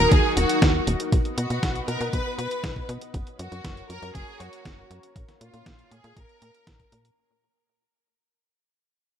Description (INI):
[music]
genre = italo disco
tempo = 119 BPM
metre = 4/4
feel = straight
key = unclear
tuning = A4 = 441 Hz
[part]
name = clear studio violin section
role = melody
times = 0.0-6.9 s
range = F4 to B4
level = -27 LUFS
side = equal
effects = ping-pong delay
[part]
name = string machine, full ensemble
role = sustained chords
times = 0.0-7.2 s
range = Bb3 to F#5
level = -30 LUFS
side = left 1 dB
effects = ensemble chorus
[part]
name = tight sequencer bass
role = bass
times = 0.0-7.1 s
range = Eb1 to B2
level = -28 LUFS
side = equal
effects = none
[part]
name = detuned 8-bit digital drum machine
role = drums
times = 0.1-7.2 s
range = hi-hat, snare drum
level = -28 LUFS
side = right 1 dB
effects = none
[part]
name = electronic kick drum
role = drums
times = 0.1-6.9 s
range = none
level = -24 LUFS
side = equal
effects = none
[sound]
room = light reverb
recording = none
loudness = -22 LUFS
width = side -9 dB against mid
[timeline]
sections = 0.0-7.2 A section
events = fade-out 0.0-7.2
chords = 0.0 Ebm; 1.1 B; 3.1 Gb; 5.2 Bbm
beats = 0.12 0.62 | 1.12 1.63 2.13 2.64 | 3.14 3.65 4.15 4.65 | 5.16 5.66 6.17 6.67